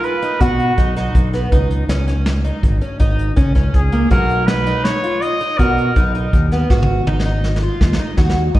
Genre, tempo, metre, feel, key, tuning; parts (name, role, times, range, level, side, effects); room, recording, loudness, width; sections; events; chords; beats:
progressive instrumental, band music in an uneven meter; 162 BPM; 7/4; straight; Db mixolydian; A4 = 438 Hz
warm trumpet; melody; 0.0-6.1 s; Gb4 to Eb5; -21 LUFS; right 1 dB; slapback echo, tape echo
fingerpicked twelve-string acoustic guitar; arpeggios; 0.0-8.6 s; Bb3 to Gb4; -22 LUFS; equal; slapback echo
vintage brush drum kit; drums; 0.0-8.6 s; hi-hat, kick drum, snare drum, toms; -17 LUFS; equal
modern bright fingered electric bass; bass; 0.4-8.6 s; Ab1 to Db3; -18 LUFS; equal
small room ambience; live gig heard through the venue's PA, recital hall reverb; -14 LUFS; side -15 dB against mid
0.0-8.6 A section
drum fill 6.7-8.6
0.0 Cb; 1.5 Dbsus2; 4.1 Cbmaj7; 6.7 Ab7(no3)
0.03 0.40 0.78 1.15 | 1.52 1.89 2.26 2.63 3.00 3.37 3.74 | 4.11 4.48 4.85 5.22 5.59 5.96 6.33 | 6.70 7.07 7.44 7.81 8.18 8.55